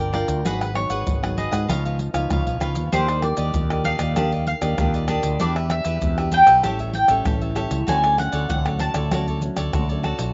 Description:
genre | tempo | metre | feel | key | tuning
samba and choro | 97 BPM | 4/4 | straight | unclear | A4 = 439 Hz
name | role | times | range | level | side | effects
mandolin | melody | 0.0-10.0 s | Cb5 to A5 | -23 LUFS | equal | none
cavaquinho | accompaniment | 0.0-10.3 s | D4 to G5 | -31 LUFS | equal | slapback echo
nylon-string guitar | accompaniment | 0.0-10.3 s | Ab2 to Bb4 | -32 LUFS | equal | none
mellow fretless electric bass | bass | 0.0-10.3 s | G1 to Ab2 | -27 LUFS | equal | none
pandeiro, tamborim, maracas and surdo | percussion | 0.1-10.3 s | none | -29 LUFS | equal | none
room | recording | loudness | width
little or no reverb | recorded outdoors, with no room sound, nothing above 7.6 kHz | -21 LUFS | mono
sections
0.0-10.3 A section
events
none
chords
0.5 Abm7; 1.7 Db9; 2.9 Ebmaj7; 5.4 Em7; 6.6 A7; 7.9 Dmaj7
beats
| 0.45 1.07 1.69 2.31 | 2.93 3.55 4.17 4.79 | 5.41 6.03 6.64 7.26 | 7.88 8.50 9.12 9.74

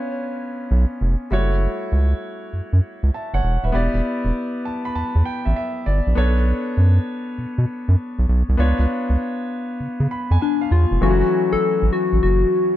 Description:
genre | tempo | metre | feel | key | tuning
R&B, new jack swing | 99 BPM | 4/4 | swing 66% on 16ths | unclear | A4 = 439 Hz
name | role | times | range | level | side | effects
soft struck synth lead | melody | 0.0-1.0, 10.4-12.8 s | D4 to C#5 | -20 LUFS | left 4 dB | chorus
clear concert grand piano | accompaniment | 0.0-12.8 s | E3 to B5 | -24 LUFS | left 1 dB | none
round analog bass | bass | 0.7-12.4 s | D#1 to C#3 | -17 LUFS | equal | none
room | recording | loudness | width
little or no reverb | dark, warm production | -18 LUFS | side -13 dB against mid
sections
0.0-1.3 A section; 1.3-11.0 B section; 11.0-12.8 A section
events
grand piano fill 4.3-6.2, 9.8-11.0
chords
0.0 C#7b9; 1.3 F#m7; 3.7 Em7; 6.2 Bm9; 8.6 C#7b9; 11.0 F#m7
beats
0.11 0.71 | 1.32 1.92 2.53 3.14 | 3.74 4.35 4.95 5.56 | 6.17 6.77 7.38 7.98 | 8.59 9.20 9.80 10.41 | 11.02 11.62 12.23

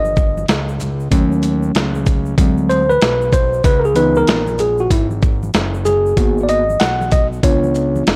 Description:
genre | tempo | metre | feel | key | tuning
hip hop, jazz-hop | 95 BPM | 4/4 | swing 64% on 16ths | unclear | A4 = 440 Hz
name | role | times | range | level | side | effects
tine electric piano | accompaniment | 0.0-8.2 s | Fb3 to Gb5 | -18 LUFS | equal | none
fat analog bass | bass | 0.0-8.2 s | F1 to Eb2 | -23 LUFS | equal | none
congas and egg shaker | percussion | 0.0-8.2 s | none | -34 LUFS | equal | none
dusty soul sampler-style drum kit | drums | 0.2-8.2 s | hi-hat, kick drum, shaker, snare drum | -18 LUFS | equal | vintage 12-bit sampler grit
room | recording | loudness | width
digital ambience | dry, gritty hardware recording | -15 LUFS | mono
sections
0.0-8.2 A section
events
tine electric piano solo 0.0-8.2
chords
0.0 Abmaj7(no3) (rootless); 1.1 Ebm7b5; 2.4 D7#11; 3.6 Dbm7; 6.2 Abm7; 7.4 Db7b9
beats
0.49 | 1.12 1.75 2.38 3.02 | 3.65 4.28 4.91 5.54 | 6.17 6.80 7.44 8.07

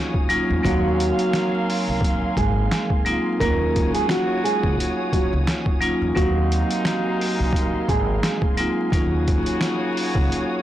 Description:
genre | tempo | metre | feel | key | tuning
hip hop, boom-bap hip-hop | 87 BPM | 4/4 | swing 56% on 16ths | Eb dorian | A4 = 440 Hz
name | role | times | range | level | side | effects
vibraphone with hard mallets | accompaniment | 0.0-10.6 s | Gb3 to F5 | -24 LUFS | equal | cassette tape, high-pass filter, low-pass filter
warm studio string section | sustained chords | 0.0-10.6 s | Bb4 to Eb6 | -33 LUFS | left 1 dB | high-pass filter, low-pass filter, plate reverb
warm horn section | stabs | 0.0-10.6 s | C3 to F5 | -31 LUFS | equal | high-pass filter, low-pass filter, digital delay, plate reverb
trip hop sampler-style drum kit | drums | 0.1-10.5 s | hi-hat, kick drum, snare drum | -24 LUFS | equal | overdrive
upright bass | bass | 0.5-10.3 s | Ab1 to Fb2 | -24 LUFS | equal | none
nylon-string guitar | melody | 0.6-8.9 s | Gb3 to Bb4 | -25 LUFS | right 2 dB | high-pass filter, low-pass filter, digital delay
finger snap | percussion | 1.3-9.8 s | none | -36 LUFS | right 4 dB | none
room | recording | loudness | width
light reverb | blown-out, overdriven recording, vinyl crackle, overdrive | -19 LUFS | side -13 dB against mid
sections
0.0-10.6 A section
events
none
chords
0.0 Ebm9; 0.6 Ab13; 3.4 Ebm9; 6.2 Ab13; 8.9 Ebm9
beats
| 0.65 1.34 2.03 2.72 | 3.41 4.10 4.79 5.47 | 6.17 6.85 7.54 8.23 | 8.92 9.61 10.30

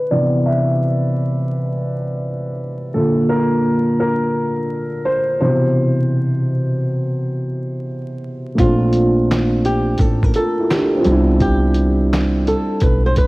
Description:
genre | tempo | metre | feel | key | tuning
lo-fi hip hop | 85 BPM | 4/4 | swing 65% on 16ths | C major | A4 = 442 Hz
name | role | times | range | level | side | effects
dark upright piano | accompaniment | 0.0-13.3 s | Bb2 to E5 | -17 LUFS | equal | low-pass filter, cassette tape
flamenco guitar | melody | 8.6-13.3 s | F4 to C5 | -22 LUFS | right 1 dB | cassette tape
upright bass | bass | 8.6-13.1 s | A1 to C2 | -18 LUFS | equal | none
lo-fi sampler-style drum kit | drums | 8.6-13.3 s | handclaps, hi-hat, kick drum, snare drum | -19 LUFS | equal | cassette tape
room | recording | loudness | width
light reverb | home recording on cassette, vinyl crackle | -15 LUFS | side -21 dB against mid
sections
0.0-8.6 A section; 8.6-13.3 B section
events
upright piano solo 0.0-8.6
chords
0.0 Cmaj7; 2.9 Bb; 5.4 Cmaj7; 8.6 Bbmaj9; 11.1 Cmaj9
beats
| 0.11 0.82 1.53 2.23 | 2.94 3.64 4.35 5.05 | 5.76 6.47 7.17 7.88 | 8.59 9.29 10.00 10.70 | 11.41 12.11 12.82

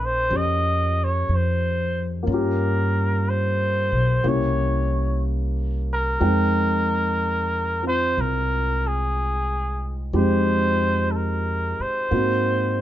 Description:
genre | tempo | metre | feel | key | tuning
jazz ballad | 61 BPM | 4/4 | swing 68% on 8ths | F minor | A4 = 439 Hz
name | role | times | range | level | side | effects
trumpet with cup mute | melody | 0.0-12.8 s | Ab4 to Eb5 | -24 LUFS | equal | none
dark concert grand piano | accompaniment | 0.0-12.8 s | Ab3 to G5 | -26 LUFS | equal | none
upright bass | bass | 0.0-12.8 s | Bb1 to Ab2 | -24 LUFS | equal | none
room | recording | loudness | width
light reverb | dark, warm production, nothing above 7.5 kHz | -20 LUFS | side -12 dB against mid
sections
0.0-12.8 A section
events
none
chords
0.0 Bbm7; 2.3 Gm7b5; 4.2 C7b9; 6.2 Fm9; 12.1 Ab7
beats
0.31 1.29 | 2.27 3.26 4.24 5.22 | 6.21 7.19 8.17 9.16 | 10.14 11.13 12.11

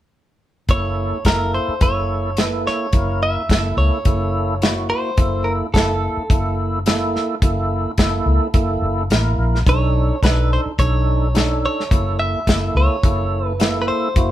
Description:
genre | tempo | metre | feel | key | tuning
straight-eighth soul blues | 107 BPM | 4/4 | swing 53% on 16ths | unclear | A4 = 439 Hz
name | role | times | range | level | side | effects
direct-recorded clean electric guitar | melody | 0.7-14.3 s | A4 to E5 | -23 LUFS | right 1 dB | none
tonewheel organ | accompaniment | 0.7-14.3 s | A#3 to A#4 | -23 LUFS | right 2 dB | slow rotary speaker, overdrive, chorus vibrato
vintage muted fingered electric bass | bass | 0.7-14.3 s | F#1 to C#2 | -20 LUFS | left 1 dB | none
warm soul drum kit | drums | 0.7-14.3 s | hi-hat, kick drum, snare drum | -18 LUFS | equal | none
room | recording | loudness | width
light reverb | band playing live in one room | -16 LUFS | side -13 dB against mid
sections
0.7-14.3 A section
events
none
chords
0.7 F#7#9; 9.7 B7#9; 11.9 F#7#9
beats
| 0.69 1.25 1.81 2.37 | 2.93 3.49 4.05 4.61 | 5.17 5.74 6.30 6.86 | 7.42 7.98 8.54 9.10 | 9.66 10.23 10.79 11.35 | 11.91 12.47 13.03 13.59 | 14.15

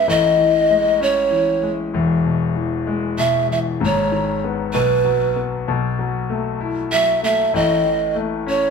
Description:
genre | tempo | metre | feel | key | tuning
six-eight pop ballad | 64 BPM (dotted quarters) | 6/8 | straight | E major | A4 = 440 Hz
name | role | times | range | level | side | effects
breathy mellow pan flute | melody | 0.0-8.7 s | B4 to E5 | -17 LUFS | right 1 dB | none
clear concert grand piano | accompaniment | 0.0-8.7 s | E1 to E4 | -20 LUFS | left 4 dB | none
room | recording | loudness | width
wet large studio reverb, RT60 0.9 s | band playing live in one room | -16 LUFS | side -5 dB against mid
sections
0.0-8.7 A section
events
none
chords
0.1 Amaj7; 1.9 E; 3.8 G#m; 4.7 B5; 5.7 B7sus4; 7.5 A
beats
| 0.06 0.99 | 1.93 2.86 | 3.79 4.73 | 5.66 6.59 | 7.53 8.46

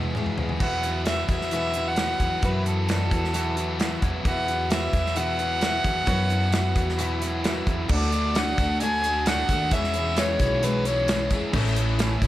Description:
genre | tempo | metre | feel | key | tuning
folk rock and heartland rock | 132 BPM | 4/4 | straight | unclear | A4 = 443 Hz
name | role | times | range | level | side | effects
picked twelve-string acoustic guitar | accompaniment | 0.0-12.3 s | E2 to F#4 | -32 LUFS | left 4 dB | none
biting overdriven guitar | riff | 0.0-12.3 s | E2 to G#4 | -30 LUFS | equal | none
upright bass | bass | 0.0-12.3 s | A1 to F#2 | -27 LUFS | equal | none
natural country drum kit | drums | 0.0-12.3 s | crash cymbal, hi-hat, kick drum, snare drum, toms | -27 LUFS | equal | none
warm fiddle | melody | 0.6-11.3 s | A4 to G#5 | -27 LUFS | equal | tape echo
bright grand piano | accompaniment | 0.6-12.3 s | E4 to E5 | -37 LUFS | right 5 dB | none
tambourine | percussion | 7.9-12.3 s | none | -44 LUFS | left 10 dB | none
room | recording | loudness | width
light reverb, small room ambience | none | -22 LUFS | side -14 dB against mid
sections
0.6-7.9 A section; 7.9-12.3 B section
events
drum fill 0.0-0.6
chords
0.0 E; 0.6 Esus2; 7.9 D; 9.7 E6; 11.5 A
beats
0.15 | 0.61 1.06 1.52 1.98 | 2.43 2.89 3.35 3.80 | 4.26 4.71 5.17 5.63 | 6.08 6.54 6.99 7.45 | 7.90 8.36 8.81 9.27 | 9.72 10.18 10.63 11.09 | 11.54 12.00

